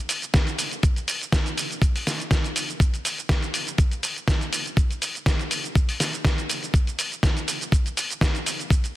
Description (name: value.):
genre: nu-disco.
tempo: 122 BPM.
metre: 4/4.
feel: swing 53% on 16ths.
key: none.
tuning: none.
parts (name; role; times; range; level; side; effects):
dusty soul sampler-style drum kit; drums; 0.1-8.9 s; hi-hat, shaker, snare drum; -25 LUFS; equal; none.
electronic kick drum; drums; 0.3-8.8 s; none; -21 LUFS; equal; none.
room: light reverb.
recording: dense, heavily limited modern master.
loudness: -21 LUFS.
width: side -16 dB against mid.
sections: 0.0-9.0 A section.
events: none.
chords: none.